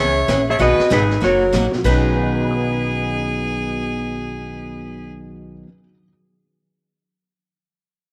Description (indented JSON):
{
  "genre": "country, western swing",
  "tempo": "192 BPM",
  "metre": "4/4",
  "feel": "swing 64% on 8ths",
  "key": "B major",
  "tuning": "A4 = 436 Hz",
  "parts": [
    { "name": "clean lap steel guitar", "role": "melody", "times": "0.0-5.1 s", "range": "D#4 to E5", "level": "-21 LUFS", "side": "equal", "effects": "none" },
    { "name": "clear fiddle", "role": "second line", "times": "0.0-5.1 s", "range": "G#4 to C#5", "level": "-27 LUFS", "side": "equal", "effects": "none" },
    { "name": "picked steel-string acoustic guitar", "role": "accompaniment", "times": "0.0-5.7 s", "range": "B2 to G#4", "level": "-26 LUFS", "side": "equal", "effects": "none" },
    { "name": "upright bass", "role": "bass", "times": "0.0-5.6 s", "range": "F#1 to C#2", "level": "-26 LUFS", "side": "equal", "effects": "none" },
    { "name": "vintage brush drum kit", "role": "drums", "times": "0.3-2.1 s", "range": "brushed snare drum, crash cymbal, hi-hat, kick drum, snare drum", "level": "-30 LUFS", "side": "equal", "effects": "none" },
    { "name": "honky-tonk upright piano", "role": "accompaniment", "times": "1.7-6.1 s", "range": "B2 to B6", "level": "-31 LUFS", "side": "equal", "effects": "none" }
  ],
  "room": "light reverb, small room ambience",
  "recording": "none",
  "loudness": "-18 LUFS",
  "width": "mono",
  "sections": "0.0-1.8 A section; 1.8-4.3 B section",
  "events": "none",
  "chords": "0.0 E6; 0.6 B6; 1.2 F#6; 1.8 B6",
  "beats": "0.28 | 0.60 0.91 1.22 1.54 | 1.85 2.16 2.47 2.79 | 3.10 3.41 3.73 4.04"
}